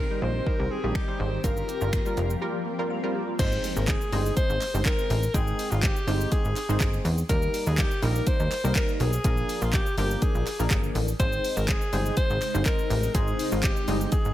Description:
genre	dance-pop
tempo	123 BPM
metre	4/4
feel	straight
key	unclear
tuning	A4 = 440 Hz
part	bright alto saxophone	melody	0.0-14.3 s	F4 to C5	-31 LUFS	left 1 dB	diffuse ambient delay
part	funky polysynth comp	accompaniment	0.0-14.3 s	F3 to G5	-32 LUFS	equal	chorus, sidechain pumping
part	granular cloud pad	sustained chords	0.0-3.4, 12.1-14.3 s	C3 to G4	-35 LUFS	left 2 dB	built-in reverb, analog chorus, sidechain pumping
part	glassy wavetable pluck	arpeggios	0.0-3.4 s	G3 to F5	-39 LUFS	right 1 dB	chorus, sidechain pumping, diffuse ambient delay
part	plucky analog bass	bass	0.0-14.3 s	F1 to Fb2	-27 LUFS	equal	sidechain pumping
part	deep house drum kit	drums	0.5-14.3 s	crash cymbal, finger snaps, handclaps, hi-hat, kick drum, shaker	-27 LUFS	equal	none
part	swell and impact	sound effects	2.5-5.3 s	none	-39 LUFS	left 2 dB	none
part	group handclap	percussion	3.9-13.8 s	none	-42 LUFS	right 4 dB	none
room	light reverb, digital ambience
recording	none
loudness	-23 LUFS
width	side -13 dB against mid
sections	0.0-3.4 A section; 3.4-14.3 B section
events	break 2.4-3.4; swell 2.5-3.4; impact 3.4-5.3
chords	0.0 Cm; 1.4 Gm7; 3.4 Ab; 7.3 Eb; 9.2 Bb; 11.2 Ab

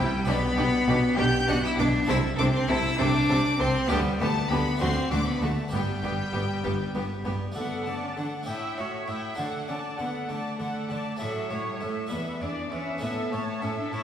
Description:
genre	classical, baroque-style concerto movement with solo episodes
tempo	66 BPM (dotted quarters)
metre	6/8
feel	straight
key	G major, D major from 7.6 s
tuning	A4 = 440 Hz
part	clear cello	melody	0.0-14.0 s	F#3 to G4	-29 LUFS	left 1 dB	none
part	rich chamber violin section	melody	0.0-14.0 s	E5 to G6	-34 LUFS	left 2 dB	none
part	rich chamber violin section	second line	0.0-14.0 s	F#4 to A5	-35 LUFS	left 1 dB	none
part	clear studio viola section	accompaniment	0.0-14.0 s	A3 to E5	-34 LUFS	equal	none
part	harpsichord	accompaniment	0.0-14.0 s	E2 to E5	-34 LUFS	equal	none
part	warm chamber cello section	bass	0.0-14.0 s	E2 to D3	-33 LUFS	right 1 dB	none
part	warm chamber double bass section	bass	0.0-7.3 s	G1 to D2	-30 LUFS	right 1 dB	none
room	wet scoring stage reverb, RT60 1.5 s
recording	recorded in a church or concert hall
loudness	-24 LUFS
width	side -9 dB against mid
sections	0.0-7.6 A section; 7.6-14.0 B section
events	none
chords	0.3 G/B; 2.1 Am/C; 3.9 G/D; 4.8 D; 5.7 G; 7.6 D; 8.5 A7; 9.4 D; 11.2 A; 12.1 E7; 13.0 A

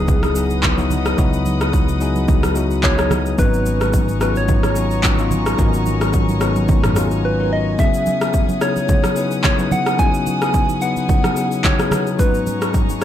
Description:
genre	amapiano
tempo	109 BPM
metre	4/4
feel	swing 55% on 16ths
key	C# minor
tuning	A4 = 440 Hz
part	soft struck synth lead	melody	0.0-12.7 s	G#4 to G#5	-23 LUFS	equal	chorus, tremolo, ping-pong delay
part	bell-like tine electric piano	accompaniment	0.0-13.0 s	G#2 to B4	-21 LUFS	left 4 dB	none
part	warm studio string section	sustained chords	0.0-13.0 s	G#3 to D#6	-28 LUFS	left 1 dB	none
part	fingered electric bass	bass	0.0-7.7 s	G#1 to C#2	-21 LUFS	equal	none
part	impact	sound effects	0.0-1.2 s	none	barely audible	none	none
part	deep house drum kit	drums	0.1-13.0 s	handclaps, kick drum, rim click, shaker, toms	-18 LUFS	equal	overdrive
part	congas	percussion	0.1-13.0 s	none	-26 LUFS	right 4 dB	none
room	light reverb, digital ambience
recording	dark, warm production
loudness	-15 LUFS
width	side -11 dB against mid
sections	0.0-13.0 A section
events	impact 0.0-1.2; break 7.2-7.8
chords	0.0 C#m11; 3.4 G#m11; 7.8 C#m11; 12.2 G#m11

